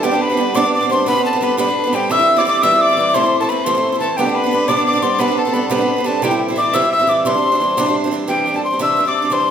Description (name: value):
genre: celtic folk, Celtic jig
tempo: 116 BPM (dotted quarters)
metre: 6/8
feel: straight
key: C major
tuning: A4 = 442 Hz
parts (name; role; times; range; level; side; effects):
- mellow hollow tin whistle; melody; 0.0-9.5 s; G5 to E6; -17 LUFS; left 1 dB; none
- concert harp; second line; 0.0-9.2 s; G4 to E5; -22 LUFS; right 1 dB; none
- warm fiddle; second line; 0.0-9.5 s; G4 to E5; -22 LUFS; left 5 dB; none
- picked swing-style acoustic guitar; accompaniment; 0.0-9.5 s; C3 to E4; -18 LUFS; right 4 dB; none
room: wet recital hall reverb, RT60 1.7 s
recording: none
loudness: -13 LUFS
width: side -8 dB against mid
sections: 0.0-8.3 A section; 8.3-9.5 B section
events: none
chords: 0.0 G/C; 2.1 C; 3.1 Am/C; 4.2 G/C; 6.2 C; 7.3 Cadd9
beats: | 0.04 0.55 | 1.07 1.59 | 2.10 2.62 | 3.13 3.65 | 4.17 4.68 | 5.20 5.71 | 6.23 6.74 | 7.26 7.77 | 8.29 8.81 | 9.32